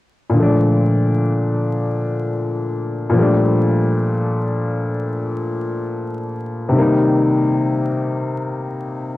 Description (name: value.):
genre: hip hop.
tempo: free time.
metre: none.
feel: none.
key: unclear.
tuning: A4 = 435 Hz.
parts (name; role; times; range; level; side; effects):
warm upright piano; solo; 0.3-9.2 s; Bb2 to Eb4; -16 LUFS; left 1 dB; cassette tape.
room: light reverb.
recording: home recording on cassette, vinyl crackle.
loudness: -16 LUFS.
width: side -16 dB against mid.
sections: 0.3-9.2 A section.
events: none.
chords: 0.3 Bbmaj7; 3.1 Gm9/Bb; 6.7 Cm7.